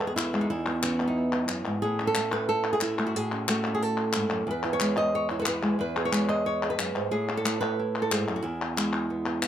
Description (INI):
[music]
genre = flamenco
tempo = 181 BPM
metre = 4/4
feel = straight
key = E major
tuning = A4 = 442 Hz
[part]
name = flamenco guitar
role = melody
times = 0.0-9.5 s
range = E2 to D#5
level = -26 LUFS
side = right 1 dB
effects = none
[part]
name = palmas hand claps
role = percussion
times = 0.0-9.5 s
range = none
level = -31 LUFS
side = left 4 dB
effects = none
[sound]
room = little or no reverb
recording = close, detailed microphones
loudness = -25 LUFS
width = side -10 dB against mid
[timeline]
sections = 0.0-9.5 A section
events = none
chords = 0.0 E; 1.8 A; 4.5 E; 7.1 A5; 8.4 E